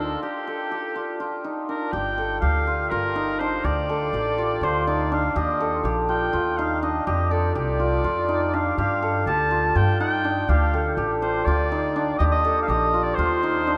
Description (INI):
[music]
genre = contemporary instrumental, chamber music in an uneven meter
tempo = 246 BPM (eighths)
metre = 7/8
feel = straight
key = G minor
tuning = A4 = 440 Hz
[part]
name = warm oboe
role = melody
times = 0.0-13.8 s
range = G4 to A5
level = -28 LUFS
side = equal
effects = none
[part]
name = hammered dulcimer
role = arpeggios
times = 0.0-13.8 s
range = D4 to A4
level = -27 LUFS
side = equal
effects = none
[part]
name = upright bass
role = bass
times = 0.0-13.8 s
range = G1 to G2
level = -28 LUFS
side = equal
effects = none
[sound]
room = wet cathedral reverb, RT60 5.4 s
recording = in a vast, echoing space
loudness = -23 LUFS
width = mono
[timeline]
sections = 0.0-1.9 A section; 1.9-13.8 B section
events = none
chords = 0.0 G5/D; 1.9 Gm9; 3.6 Dm; 5.4 Eb; 7.1 F13; 8.8 Gsus2; 10.5 Dm; 12.2 Eb6